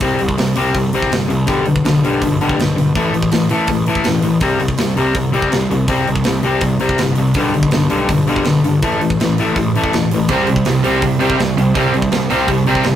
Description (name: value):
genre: punk rock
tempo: 163 BPM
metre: 4/4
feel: straight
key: C major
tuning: A4 = 440 Hz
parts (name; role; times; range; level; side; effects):
- crunchy overdriven guitar; riff; 0.0-13.0 s; G2 to C4; -15 LUFS; left 2 dB; none
- fuzz picked electric bass; bass; 0.0-13.0 s; E1 to C2; -21 LUFS; right 1 dB; overdrive
- tight metal drum kit; drums; 0.0-12.9 s; hi-hat, kick drum, snare drum; -21 LUFS; right 2 dB; none
- overdriven electric guitar; riff; 10.3-13.0 s; C3 to C4; -17 LUFS; right 6 dB; none
room: light reverb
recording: rough rehearsal-room recording, tube saturation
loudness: -13 LUFS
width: side -11 dB against mid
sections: 0.0-13.0 A section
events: none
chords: 0.0 C5; 1.5 G/B; 2.9 A5; 4.4 C5; 7.4 G/B; 8.8 A5; 10.3 C5